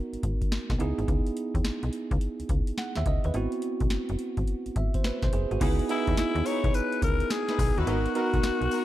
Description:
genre	R&B, new jack swing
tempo	106 BPM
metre	4/4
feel	swing 65% on 16ths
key	unclear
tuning	A4 = 439 Hz
part	bell-like tine electric piano	accompaniment	0.0-8.8 s	B3 to F#5	-31 LUFS	right 4 dB	none
part	slap-like FM bass	bass	0.1-8.7 s	F#1 to D#2	-29 LUFS	equal	none
part	booming analog drum machine	drums	0.1-8.8 s	crash cymbal, hi-hat, kick drum, snare drum, tambourine	-29 LUFS	equal	none
part	clear studio string section	stabs	5.6-8.8 s	B3 to B4	-37 LUFS	left 4 dB	none
part	growling alto saxophone	melody	5.9-8.8 s	E4 to C#5	-29 LUFS	left 5 dB	none
part	group handclap	percussion	6.2-8.6 s	none	-48 LUFS	left 9 dB	none
room	light reverb, digital ambience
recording	dark, warm production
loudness	-25 LUFS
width	side -14 dB against mid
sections	0.0-5.6 A section; 5.6-8.8 B section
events	none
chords	0.0 G#m9; 0.8 C#m9; 3.3 G#7alt; 5.6 C#m9; 7.9 G#m9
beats	0.51 | 1.08 1.64 2.21 2.78 | 3.34 3.91 4.47 5.04 | 5.61 6.17 6.74 7.30 | 7.87 8.44

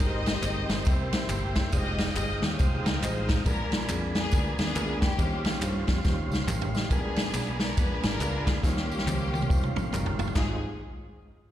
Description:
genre	uptempo gospel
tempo	139 BPM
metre	4/4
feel	swing 62% on 8ths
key	Ab major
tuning	A4 = 440 Hz
part	warm studio string section	melody	0.0-10.6 s	Bb3 to Eb5	-34 LUFS	left 2 dB	slapback echo
part	warm upright piano	accompaniment	0.0-10.6 s	Ab1 to G5	-37 LUFS	left 2 dB	slapback echo
part	mellow tonewheel organ	sustained chords	0.0-10.6 s	Ab3 to Eb6	-37 LUFS	right 3 dB	slow rotary speaker
part	fingered electric bass	bass	0.0-10.6 s	F1 to G2	-31 LUFS	equal	none
part	swinging big-band drum kit	drums	0.0-10.5 s	china cymbal, kick drum, ride cymbal, snare drum, toms	-27 LUFS	equal	none
part	tambourine and handclaps	percussion	0.0-10.6 s	none	-41 LUFS	equal	slapback echo
room	studio ambience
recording	live gig heard through the venue's PA, recital hall reverb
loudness	-25 LUFS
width	side -12 dB against mid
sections	0.0-6.9 A section; 6.9-10.4 B section; 10.4-11.5 C section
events	drum fill 6.0-6.9, 8.6-10.4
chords	0.0 Abmaj9; 0.9 C7; 1.7 Fm9; 3.5 Bb7b9; 5.2 Eb13; 6.9 Bb7b9; 8.6 Eb13; 10.4 Ab6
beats	| 0.00 0.43 0.86 1.29 | 1.73 2.16 2.59 3.02 | 3.46 3.89 4.32 4.75 | 5.18 5.62 6.05 6.48 | 6.91 7.34 7.77 8.20 | 8.63 9.06 9.49 9.92 | 10.35

